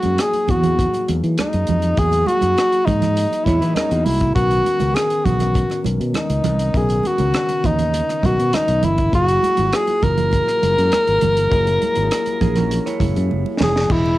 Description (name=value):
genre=lush 1970s-style soul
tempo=101 BPM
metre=4/4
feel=straight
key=unclear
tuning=A4 = 440 Hz
part: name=breathy tenor saxophone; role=melody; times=0.0-14.2 s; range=D#4 to A#4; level=-18 LUFS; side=equal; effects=cassette tape, plate reverb
part: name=mellow tine electric piano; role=accompaniment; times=0.0-14.2 s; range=C#3 to D#5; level=-26 LUFS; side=left 6 dB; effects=medium stereo tremolo
part: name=fingered electric bass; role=bass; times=0.0-14.2 s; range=E1 to E3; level=-20 LUFS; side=equal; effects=none
part: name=tight funk drum kit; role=drums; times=0.0-14.0 s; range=crash cymbal, hi-hat, kick drum, rim click, snare drum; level=-24 LUFS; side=equal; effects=none
part: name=congas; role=percussion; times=0.0-14.2 s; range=none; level=-26 LUFS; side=right 7 dB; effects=none
part: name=electric guitar through a small old amp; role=riff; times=3.5-4.3, 12.4-13.7 s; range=A#3 to C#5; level=-27 LUFS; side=right 7 dB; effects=none
room=moderate studio reverb, RT60 0.5 s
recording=home recording on cassette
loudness=-15 LUFS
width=side -16 dB against mid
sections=0.0-13.9 A section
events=drum fill 13.3-13.9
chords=0.0 Emaj9#11; 4.4 Bmaj9; 9.1 F#9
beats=0.18 0.78 1.38 | 1.97 2.57 3.16 3.76 | 4.36 4.95 5.55 6.14 | 6.74 7.33 7.93 8.53 | 9.12 9.72 10.32 10.91 | 11.51 12.11 12.71 13.30 | 13.90